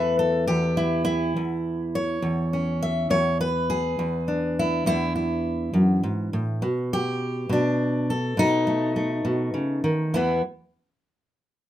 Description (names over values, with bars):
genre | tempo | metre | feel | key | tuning
acoustic country blues, solo or duo | 68 BPM (dotted quarters) | 12/8 | straight | unclear | A4 = 443 Hz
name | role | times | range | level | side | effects
fingerpicked steel-string acoustic guitar | solo | 0.0-10.4 s | E2 to E5 | -22 LUFS | equal | none
room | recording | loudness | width
moderate small room reverb, RT60 0.5 s | minimal, uncompressed stereo recording | -22 LUFS | side -12 dB against mid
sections
0.0-10.1 A section; 10.1-11.7 B section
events
none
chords
0.0 A7; 3.1 E7; 6.6 B7; 10.1 E5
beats
0.48 1.35 2.23 | 3.11 3.99 4.87 5.74 | 6.62 7.50 8.38 9.26 | 10.14